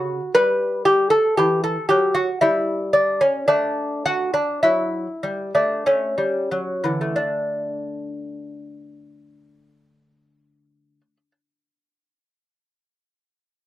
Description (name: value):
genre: classical, baroque-style dance for lute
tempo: 44-60 BPM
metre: 3/4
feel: rubato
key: D major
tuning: A4 = 438 Hz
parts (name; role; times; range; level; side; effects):
- lute; solo; 0.0-11.3 s; C#3 to B4; -18 LUFS; equal; none
room: light reverb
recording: dark, warm production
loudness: -18 LUFS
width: side -14 dB against mid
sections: 0.0-7.2 A section; 7.2-11.1 B section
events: slowing down 0.0-7.2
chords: 0.3 Emadd9; 2.4 N.C.; 3.5 Em11; 5.9 A7; 7.2 D5